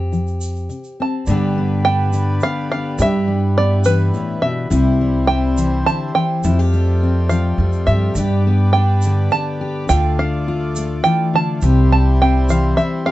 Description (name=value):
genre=acoustic folk duo or small band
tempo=104 BPM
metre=3/4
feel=straight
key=G mixolydian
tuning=A4 = 440 Hz
part: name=fingerpicked steel-string acoustic guitar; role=accompaniment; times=0.0-13.1 s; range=F2 to G4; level=-20 LUFS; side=left 3 dB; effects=none
part: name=upright bass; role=bass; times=0.0-12.7 s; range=C2 to G2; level=-16 LUFS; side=right 1 dB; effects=none
part: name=egg shaker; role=percussion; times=0.1-12.8 s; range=none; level=-35 LUFS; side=right 4 dB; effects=none
part: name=open-back banjo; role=melody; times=1.0-13.1 s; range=B4 to A5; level=-20 LUFS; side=right 3 dB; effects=none
part: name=hand-pumped harmonium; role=sustained chords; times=1.3-13.1 s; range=G3 to D5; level=-29 LUFS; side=right 1 dB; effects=none
room=light reverb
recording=dark, warm production, nothing above 8.0 kHz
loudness=-14 LUFS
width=side -15 dB against mid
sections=0.0-1.3 A section; 1.3-13.1 B section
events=none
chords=0.0 Fsus2; 1.3 G; 3.0 Em/G; 4.7 C; 6.4 Fadd9; 8.2 G; 9.9 Dm; 11.6 C